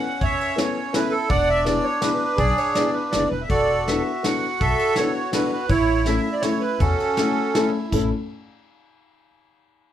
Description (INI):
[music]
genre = musette waltz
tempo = 162 BPM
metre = 3/4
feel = rubato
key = A major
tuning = A4 = 440 Hz
[part]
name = accordion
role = melody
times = 0.0-8.1 s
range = C#4 to F#5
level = -22 LUFS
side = right 3 dB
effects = light tremolo tuning
[part]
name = melodica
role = second line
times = 0.0-8.1 s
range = C#4 to F#4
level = -28 LUFS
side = equal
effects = none
[part]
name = dark upright piano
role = accompaniment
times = 0.0-8.1 s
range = A3 to A4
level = -24 LUFS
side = left 4 dB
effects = none
[part]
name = upright bass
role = bass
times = 0.2-8.1 s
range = E1 to E2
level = -25 LUFS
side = equal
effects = none
[part]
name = soft brush drum kit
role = drums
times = 0.2-8.0 s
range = crash cymbal, kick drum, ride cymbal, snare drum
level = -28 LUFS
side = equal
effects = none
[sound]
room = moderate small room reverb, RT60 0.6 s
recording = none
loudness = -19 LUFS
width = side -10 dB against mid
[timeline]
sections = 0.0-7.9 A section; 7.9-9.0 B section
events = none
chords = 0.0 Aadd9; 1.3 E7; 3.5 E7sus4; 5.7 A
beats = | 0.21 0.57 0.94 | 1.29 1.65 2.01 | 2.38 2.75 3.13 | 3.50 3.87 4.25 | 4.61 4.97 5.33 | 5.70 6.06 6.43 | 6.80 7.17 7.55 | 7.93